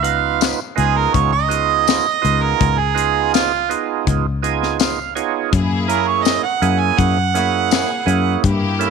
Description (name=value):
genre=straight-eighth soul blues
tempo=82 BPM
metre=4/4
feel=straight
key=Db mixolydian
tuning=A4 = 440 Hz
part: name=clear harmonica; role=second line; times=0.0-8.4 s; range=F4 to Ab5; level=-18 LUFS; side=right 11 dB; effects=overdrive
part: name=percussive tonewheel organ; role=accompaniment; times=0.0-8.9 s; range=Bb3 to Ab5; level=-21 LUFS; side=right 13 dB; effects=slow rotary speaker, overdrive
part: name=fingered electric bass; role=bass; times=0.0-8.9 s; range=Db2 to G2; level=-20 LUFS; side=left 2 dB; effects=none
part: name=tight funk drum kit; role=drums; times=0.0-8.9 s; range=hi-hat, kick drum, snare drum, tambourine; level=-20 LUFS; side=left 8 dB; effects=none
part: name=rich symphonic string section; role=sustained chords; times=5.5-8.9 s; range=Bb3 to Ab4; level=-26 LUFS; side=left 3 dB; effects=none
room=light reverb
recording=1960s-style stereo with parts hard left and right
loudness=-15 LUFS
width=side -5 dB against mid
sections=0.0-8.9 A section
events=harmonica solo 0.0-8.9; tonewheel organ fill 4.1-5.5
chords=0.0 Db9; 5.5 Gb9